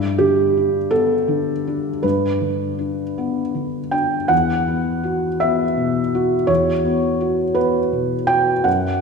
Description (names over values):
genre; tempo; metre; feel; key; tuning
neoclassical minimalist piano; 55 BPM (dotted quarters); 6/8; rubato; unclear; A4 = 440 Hz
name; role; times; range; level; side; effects
felt-muted upright piano; solo; 0.0-9.0 s; E2 to G5; -17 LUFS; equal; none
room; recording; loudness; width
wet scoring stage reverb, RT60 1.7 s; recorded in a church or concert hall; -17 LUFS; side -4 dB against mid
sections
0.0-4.3 A section; 4.3-9.0 B section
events
none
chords
0.0 G; 4.3 Esus2